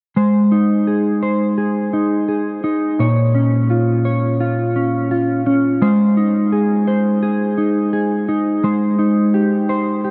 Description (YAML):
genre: dream pop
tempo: 85 BPM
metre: 4/4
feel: straight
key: Ab major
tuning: A4 = 440 Hz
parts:
  - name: mellow electric guitar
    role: solo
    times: 0.2-10.1 s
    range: Bb2 to Db5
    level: -17 LUFS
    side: equal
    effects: analog chorus, tape echo
room: wet huge ambient reverb, RT60 8.5 s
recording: dark, warm production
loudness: -17 LUFS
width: mono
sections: 0.2-10.1 A section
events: none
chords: 0.2 Ab; 3.0 Bbm; 5.8 Ab; 8.6 Eb6/Ab